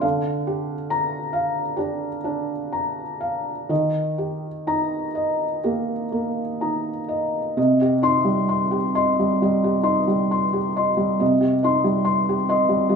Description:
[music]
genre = neoclassical minimalist piano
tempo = 60-69 BPM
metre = 4/4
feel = rubato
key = C minor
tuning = A4 = 439 Hz
[part]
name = felt-muted upright piano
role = solo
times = 0.0-13.0 s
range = C3 to C6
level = -20 LUFS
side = equal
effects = none
[sound]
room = wet large studio reverb, RT60 0.8 s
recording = band playing live in one room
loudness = -20 LUFS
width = side -6 dB against mid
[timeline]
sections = 0.0-7.6 A section; 7.6-13.0 B section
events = none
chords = 0.0 Gm7/D; 3.7 Eb; 7.6 Cm

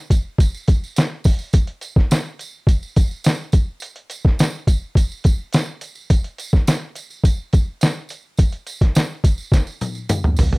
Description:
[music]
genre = indie pop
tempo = 105 BPM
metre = 4/4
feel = straight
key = none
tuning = none
[part]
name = lo-fi sampler-style drum kit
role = drums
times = 0.1-10.6 s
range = hi-hat, kick drum, snare drum, toms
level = -15 LUFS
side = equal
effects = overdrive
[part]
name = tambourine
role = percussion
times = 0.1-10.5 s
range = none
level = -34 LUFS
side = right 4 dB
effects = none
[sound]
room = little or no reverb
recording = dry, close 1970s-style studio recording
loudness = -17 LUFS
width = side -28 dB against mid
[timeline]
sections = 0.0-10.6 A section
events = drum fill 9.5-10.6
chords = none

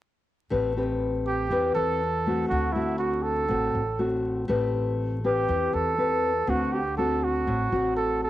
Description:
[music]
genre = bossa nova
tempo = 121 BPM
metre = 4/4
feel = straight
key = unclear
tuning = A4 = 440 Hz
[part]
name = nylon-string guitar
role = accompaniment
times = 0.5-8.3 s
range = A2 to B4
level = -26 LUFS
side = left 3 dB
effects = none
[part]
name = upright bass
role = bass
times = 0.5-8.3 s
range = A1 to E2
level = -32 LUFS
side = equal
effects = none
[part]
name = warm flugelhorn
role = melody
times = 1.3-8.3 s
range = E4 to A4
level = -26 LUFS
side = right 4 dB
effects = cassette tape
[sound]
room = light reverb, small room ambience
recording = home recording on cassette, vinyl crackle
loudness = -23 LUFS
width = side -14 dB against mid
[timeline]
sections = 0.5-8.3 A section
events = none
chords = 0.5 Am9; 2.5 D7; 4.5 Am9; 6.5 D7

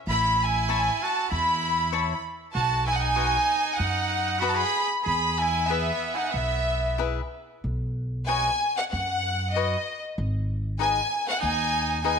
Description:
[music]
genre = mexican folk, mariachi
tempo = 96 BPM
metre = 4/4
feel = swing 54% on 8ths, rubato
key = E major, B major from 7.6 s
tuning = A4 = 440 Hz
[part]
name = bright studio violin section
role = melody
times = 0.1-12.2 s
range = D#5 to B5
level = -24 LUFS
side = equal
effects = slapback echo
[part]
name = brilliant trumpet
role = second line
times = 0.1-7.0, 11.4-12.2 s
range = B3 to G#4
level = -31 LUFS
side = right 10 dB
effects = none
[part]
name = upright bass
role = bass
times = 0.1-12.2 s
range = G#1 to F#2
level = -29 LUFS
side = equal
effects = none
[part]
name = cavaquinho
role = accompaniment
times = 0.7-12.2 s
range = D#4 to B5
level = -30 LUFS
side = left 11 dB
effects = none
[sound]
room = moderate echo chamber reverb, RT60 1.5 s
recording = 1960s-style stereo with parts hard left and right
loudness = -23 LUFS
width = side -6 dB against mid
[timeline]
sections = 0.0-7.6 A section; 7.6-12.2 B section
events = none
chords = 0.1 Aadd9; 2.5 B; 5.1 E; 7.6 Badd9; 10.2 G#m

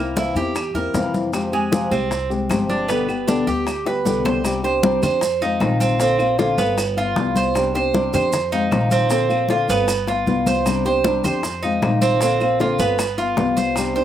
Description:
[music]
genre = latin, Cuban son and guajira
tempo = 154 BPM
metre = 4/4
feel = straight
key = unclear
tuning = A4 = 440 Hz
[part]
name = nylon-string guitar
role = accompaniment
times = 0.0-14.0 s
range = B2 to G4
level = -21 LUFS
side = left 4 dB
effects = none
[part]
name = Cuban tres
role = arpeggios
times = 0.0-14.0 s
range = Ab3 to C5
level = -22 LUFS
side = right 6 dB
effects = slapback echo
[part]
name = upright bass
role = bass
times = 0.0-14.0 s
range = G1 to F2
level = -26 LUFS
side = equal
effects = none
[part]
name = bongos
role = percussion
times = 0.2-14.0 s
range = none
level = -28 LUFS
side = left 5 dB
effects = slapback echo
[part]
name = congas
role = percussion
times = 0.2-14.0 s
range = none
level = -25 LUFS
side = left 1 dB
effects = none
[part]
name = maracas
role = percussion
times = 0.2-14.0 s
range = none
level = -34 LUFS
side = right 4 dB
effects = none
[part]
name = claves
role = percussion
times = 0.6-14.0 s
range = none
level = -36 LUFS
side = right 2 dB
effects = slapback echo
[sound]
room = little or no reverb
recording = recorded outdoors, with no room sound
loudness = -17 LUFS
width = side -10 dB against mid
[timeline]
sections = 0.0-4.4 A section; 4.4-14.0 B section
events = drum fill 3.9-4.4, 10.1-10.7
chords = 0.0 C7; 1.3 Fmadd9; 2.9 G; 4.4 Csus2; 5.2 Fm7; 6.0 Bbadd9; 6.8 G7; 7.6 Csus2; 8.3 Fm7; 9.1 Bbadd9; 9.9 G7; 10.7 Csus2; 11.4 Fm7; 12.2 Bbadd9; 13.0 G7

